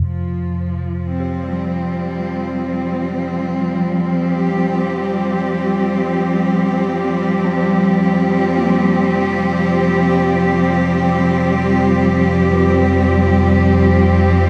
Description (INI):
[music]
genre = dark ambient drone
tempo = 53 BPM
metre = 4/4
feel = straight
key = unclear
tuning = A4 = 440 Hz
[part]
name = deep rumbling drone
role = drone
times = 0.0-14.5 s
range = F2 to C3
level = -24 LUFS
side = equal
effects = built-in reverb, subtle chorus
[part]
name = rich studio cello section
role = sustained chords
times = 0.1-14.5 s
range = F3 to G4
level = -17 LUFS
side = equal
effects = none
[part]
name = dark detuned synth bell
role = arpeggios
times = 1.2-14.5 s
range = Bb3 to G4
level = -32 LUFS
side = equal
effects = none
[sound]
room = wet cathedral reverb, RT60 6.0 s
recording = in a vast, echoing space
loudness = -16 LUFS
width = mono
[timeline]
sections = 0.1-14.5 A section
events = fade-in on synth drone 0.1-14.5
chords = 0.1 Fsus2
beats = | 0.08 1.22 2.35 3.48 | 4.61 5.74 6.88 8.01 | 9.14 10.27 11.40 12.54 | 13.67